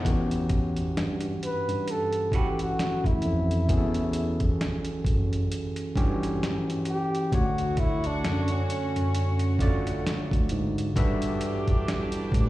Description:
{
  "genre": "R&B, neo-soul",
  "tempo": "66 BPM",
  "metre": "4/4",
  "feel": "swing 58% on 16ths",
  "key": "E dorian",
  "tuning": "A4 = 439 Hz",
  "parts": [
    { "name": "overdriven tine electric piano", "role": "accompaniment", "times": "0.0-12.5 s", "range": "D3 to F#5", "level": "-31 LUFS", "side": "moving between left 4 dB and right 2 dB", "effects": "auto-pan, plate reverb" },
    { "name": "warm horn section", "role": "stabs", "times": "0.0-0.2, 7.3-12.5 s", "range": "C#3 to C#5", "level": "-35 LUFS", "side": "right 1 dB", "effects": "plate reverb, slapback echo" },
    { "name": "boom bap sampler-style drum kit", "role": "drums", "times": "0.0-12.5 s", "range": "hi-hat, kick drum, snare drum", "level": "-28 LUFS", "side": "equal", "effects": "none" },
    { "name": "overdriven tine electric piano", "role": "bass", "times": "0.1-12.5 s", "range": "D2 to A2", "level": "-28 LUFS", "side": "equal", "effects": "auto-pan" },
    { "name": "breathy flugelhorn", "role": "melody", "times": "1.4-9.9 s", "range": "C#4 to B4", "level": "-30 LUFS", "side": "equal", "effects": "plate reverb, slapback echo" },
    { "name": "electric guitar through a small old amp", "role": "second line", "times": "2.3-2.5 s", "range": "G3 to B4", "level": "-37 LUFS", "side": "right 6 dB", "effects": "slapback echo, plate reverb" }
  ],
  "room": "light reverb",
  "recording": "live gig heard through the venue's PA, recital hall reverb",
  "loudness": "-24 LUFS",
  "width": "side -16 dB against mid",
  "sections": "0.0-12.5 A section",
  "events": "flugelhorn solo 0.0-12.5",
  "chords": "0.0 Em69; 7.3 Dmaj7; 11.0 Gmaj13"
}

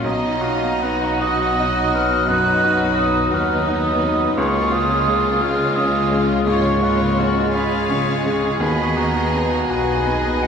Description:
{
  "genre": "classical",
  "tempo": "56 BPM (dotted quarters)",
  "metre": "12/8",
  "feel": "rubato",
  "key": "unclear",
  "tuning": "A4 = 440 Hz",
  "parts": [
    { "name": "clear baby grand piano", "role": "melody", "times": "0.0-10.5 s", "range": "B1 to F#4", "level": "-23 LUFS", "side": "left 1 dB", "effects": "none" },
    { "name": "clear oboe", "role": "second line", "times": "0.0-10.5 s", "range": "G#4 to F#5", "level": "-28 LUFS", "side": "left 3 dB", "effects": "none" },
    { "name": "rich studio violin section", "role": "second line", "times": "0.0-10.5 s", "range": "D#4 to G#4", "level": "-29 LUFS", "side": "equal", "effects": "none" },
    { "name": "silver concert flute", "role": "second line", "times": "0.0-10.5 s", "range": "F#5 to F#6", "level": "-22 LUFS", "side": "right 2 dB", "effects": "none" },
    { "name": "rich chamber viola section", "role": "accompaniment", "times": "0.0-10.5 s", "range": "G#3 to D#4", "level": "-29 LUFS", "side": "left 2 dB", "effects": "none" },
    { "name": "dark chamber double bass section", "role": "bass", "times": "0.0-10.5 s", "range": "B1 to D#2", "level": "-28 LUFS", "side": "equal", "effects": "none" },
    { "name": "warm chamber cello section", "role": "bass", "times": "0.0-10.5 s", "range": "B2 to D#3", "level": "-29 LUFS", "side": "equal", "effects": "none" },
    { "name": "rich chamber violin section", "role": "melody", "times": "0.1-10.5 s", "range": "B4 to E#5", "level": "-30 LUFS", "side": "right 2 dB", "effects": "none" },
    { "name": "clear clarinet", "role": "second line", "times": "0.1-10.5 s", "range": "D#4 to F#4", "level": "-30 LUFS", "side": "left 3 dB", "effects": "none" },
    { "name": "mellow bassoon", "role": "accompaniment", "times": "0.1-10.5 s", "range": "F#3 to B3", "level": "-28 LUFS", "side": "right 4 dB", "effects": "none" },
    { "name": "mellow French horn section", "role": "sustained chords", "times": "0.1-10.5 s", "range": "F#3 to F#4", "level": "-26 LUFS", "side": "left 1 dB", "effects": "none" }
  ],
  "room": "wet cathedral reverb, RT60 5.3 s",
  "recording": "in a vast, echoing space",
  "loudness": "-16 LUFS",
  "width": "side -6 dB against mid",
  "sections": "0.0-10.5 A section",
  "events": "none",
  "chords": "0.1 Bmaj7; 4.4 C#; 8.6 B/D#"
}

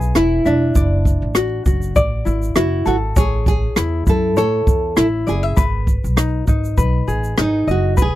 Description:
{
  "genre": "acoustic pop",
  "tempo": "100 BPM",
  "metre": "4/4",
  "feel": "swing 55% on 16ths",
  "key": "unclear",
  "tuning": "A4 = 440 Hz",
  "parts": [
    { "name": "tenor ukulele", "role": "accompaniment", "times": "0.0-8.2 s", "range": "D#4 to E5", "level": "-22 LUFS", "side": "left 4 dB", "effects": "none" },
    { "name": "upright bass", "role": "bass", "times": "0.0-8.2 s", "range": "E1 to A2", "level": "-20 LUFS", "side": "equal", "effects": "none" },
    { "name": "jazz brush drum kit", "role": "drums", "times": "0.0-8.1 s", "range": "kick drum, rim click, shaker", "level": "-18 LUFS", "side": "equal", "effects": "none" },
    { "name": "nylon-string guitar", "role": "melody", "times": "0.2-8.2 s", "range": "D4 to A4", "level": "-19 LUFS", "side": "right 2 dB", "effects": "none" }
  ],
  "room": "little or no reverb",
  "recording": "dry, close 1970s-style studio recording",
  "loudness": "-15 LUFS",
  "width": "side -15 dB against mid",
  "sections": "0.0-8.2 A section",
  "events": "none",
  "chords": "0.0 E; 0.8 Dadd9/F#; 3.2 A; 5.6 G#m"
}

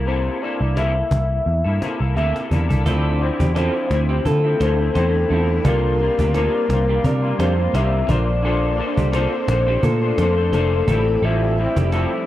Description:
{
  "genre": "indie pop, bedroom pop",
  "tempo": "86 BPM",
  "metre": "4/4",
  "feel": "swing 55% on 16ths",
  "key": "unclear",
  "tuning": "A4 = 441 Hz",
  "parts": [
    { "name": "soft octave-layered synth lead", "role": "melody", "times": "0.0-12.3 s", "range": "A4 to E5", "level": "-23 LUFS", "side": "left 1 dB", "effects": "lush chorus, slapback echo" },
    { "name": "electric guitar through a small old amp", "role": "accompaniment", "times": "0.0-12.3 s", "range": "A2 to C5", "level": "-25 LUFS", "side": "left 3 dB", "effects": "ensemble chorus, vibrato effect" },
    { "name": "vintage muted picked electric bass", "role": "bass", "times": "0.0-12.0 s", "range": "F1 to D3", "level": "-20 LUFS", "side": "equal", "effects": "none" },
    { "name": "cajon", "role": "drums", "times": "0.1-12.2 s", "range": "none", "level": "-25 LUFS", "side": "equal", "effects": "none" },
    { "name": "electric guitar through a small old amp", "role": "second line", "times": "2.9-12.1 s", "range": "E4 to C5", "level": "-28 LUFS", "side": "right 2 dB", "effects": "wide subtle chorus, slapback echo" },
    { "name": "shimmering ambient pad", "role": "sustained chords", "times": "3.9-12.3 s", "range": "C3 to E5", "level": "-31 LUFS", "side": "right 1 dB", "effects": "chorus, built-in reverb" }
  ],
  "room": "little or no reverb",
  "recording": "dry, close 1970s-style studio recording",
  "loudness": "-17 LUFS",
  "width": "side -14 dB against mid",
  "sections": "0.0-2.9 A section; 2.9-12.3 B section",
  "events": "drum fill 2.2-2.9",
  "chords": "0.0 C13; 2.9 Dm9; 5.6 C7sus4; 8.1 Bbmaj9; 10.9 Fmaj9"
}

